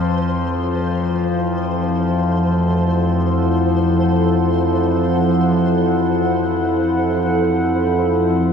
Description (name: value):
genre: ambient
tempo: free time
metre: none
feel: none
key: unclear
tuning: A4 = 438 Hz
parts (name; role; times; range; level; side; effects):
- deep dark ambient pad; sustained chords; 0.4-8.5 s; F3 to Gb5; -19 LUFS; equal; chorus, built-in reverb
- analog drone; drone; 0.0-8.5 s; F2 to F3; -18 LUFS; left 1 dB; chorus
- flickering grainy texture; texture; 0.0-8.5 s; C5; -30 LUFS; equal; built-in reverb
room: wet cathedral reverb, RT60 5.6 s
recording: small room ambience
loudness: -15 LUFS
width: side -7 dB against mid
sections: 0.0-8.5 A section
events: none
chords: 0.0 Am/F